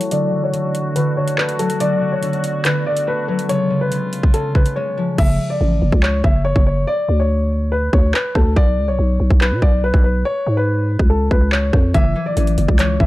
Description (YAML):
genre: hip hop, drill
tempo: 142 BPM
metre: 4/4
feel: half-time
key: F# minor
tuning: A4 = 442 Hz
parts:
  - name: warm upright piano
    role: melody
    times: 0.0-13.1 s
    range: A4 to E5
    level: -21 LUFS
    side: left 1 dB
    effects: low-pass filter, digital delay
  - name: concert harp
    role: accompaniment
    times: 0.0-5.2, 11.9-13.1 s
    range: C#3 to A3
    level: -21 LUFS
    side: left 1 dB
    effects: low-pass filter
  - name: warm woodwind section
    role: sustained chords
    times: 0.0-5.2 s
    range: C#3 to F#4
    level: -30 LUFS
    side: left 1 dB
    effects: low-pass filter
  - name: drill drum kit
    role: drums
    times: 0.0-13.1 s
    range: crash cymbal, handclaps, hi-hat, kick drum, rim click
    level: -16 LUFS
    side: equal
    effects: none
  - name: growling 808-style bass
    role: bass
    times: 5.2-13.1 s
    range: F#1 to B2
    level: -17 LUFS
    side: equal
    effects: none
room: small room ambience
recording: dark, warm production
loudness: -15 LUFS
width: side -17 dB against mid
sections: 0.0-5.2 A section; 5.2-13.1 B section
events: filter sweep 0.0-5.2; break 4.8-5.2; hi-hats muted 5.2-11.9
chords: 0.1 Dmaj7; 1.8 Bm7; 3.5 C#7; 5.2 F#m; 6.9 Bmadd9/D; 8.6 Bmadd9; 10.3 C#7; 11.9 F#m7